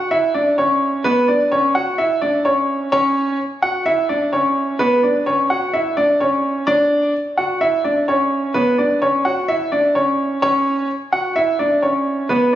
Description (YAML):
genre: hip hop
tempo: 128 BPM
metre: 4/4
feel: half-time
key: B minor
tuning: A4 = 438 Hz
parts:
  - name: warm concert grand piano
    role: solo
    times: 0.0-12.6 s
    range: B3 to F#5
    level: -15 LUFS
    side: equal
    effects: low-pass filter, digital delay
room: moderate recital hall reverb, RT60 1.4 s, studio reverb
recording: recorded on a phone in the room, compression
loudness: -15 LUFS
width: side -12 dB against mid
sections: 0.0-6.7 A section; 6.7-12.6 B section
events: none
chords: 0.0 Bmadd9